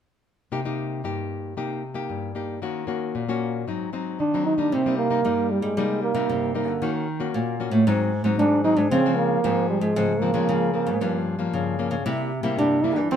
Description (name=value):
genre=samba and choro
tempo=114 BPM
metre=4/4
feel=straight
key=C minor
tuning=A4 = 441 Hz
part: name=nylon-string guitar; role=accompaniment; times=0.5-13.2 s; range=F2 to G4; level=-27 LUFS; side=left 4 dB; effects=none
part: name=dark trombone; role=melody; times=4.2-13.2 s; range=G3 to E4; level=-22 LUFS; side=right 3 dB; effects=none
part: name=nylon-string guitar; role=bass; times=4.7-13.2 s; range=G2 to G3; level=-25 LUFS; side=equal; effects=none
room=light reverb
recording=minimal, uncompressed stereo recording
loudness=-21 LUFS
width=side -8 dB against mid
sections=0.5-4.7 A section; 4.7-13.2 B section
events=none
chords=0.5 Cm7; 2.6 Ebm7; 3.7 Ab7; 4.7 Cm7; 6.8 Ebm7; 7.9 Ab7; 8.9 Dbmaj7; 11.0 Gm7b5; 12.1 C7